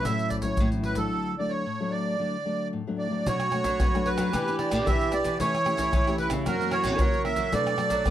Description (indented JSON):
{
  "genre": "samba and choro",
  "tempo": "112 BPM",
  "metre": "4/4",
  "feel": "straight",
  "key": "D major, B minor from 3.3 s",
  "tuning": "A4 = 440 Hz",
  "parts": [
    { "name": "accordion", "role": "melody", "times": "0.0-8.1 s", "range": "A4 to E5", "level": "-28 LUFS", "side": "right 2 dB", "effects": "light tremolo tuning" },
    { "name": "nylon-string guitar", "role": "accompaniment", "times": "0.0-8.1 s", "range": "F#2 to G4", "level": "-31 LUFS", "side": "left 4 dB", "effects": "none" },
    { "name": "nylon-string guitar", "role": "bass", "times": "0.0-8.1 s", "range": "A2 to B3", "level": "-31 LUFS", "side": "equal", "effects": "none" },
    { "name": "maracas, surdo, pandeiro and tamborim", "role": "percussion", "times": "0.1-8.1 s", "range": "none", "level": "-29 LUFS", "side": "equal", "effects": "none" },
    { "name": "growling tenor saxophone", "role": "second line", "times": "3.3-8.1 s", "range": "E4 to A#4", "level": "-32 LUFS", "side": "right 3 dB", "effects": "none" }
  ],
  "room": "light reverb",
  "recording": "none",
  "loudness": "-24 LUFS",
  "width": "side -11 dB against mid",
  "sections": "0.0-3.3 A section; 3.3-8.1 B section",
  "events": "break 1.1-3.3",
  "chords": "0.1 A6; 1.1 D; 3.3 Bm7; 4.3 Em7; 5.4 A7/E; 6.5 F#7; 7.5 Bm7",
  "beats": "0.06 0.60 | 1.13 1.67 2.20 2.73 | 3.27 3.80 4.33 4.87 | 5.40 5.93 6.47 7.00 | 7.53 8.06"
}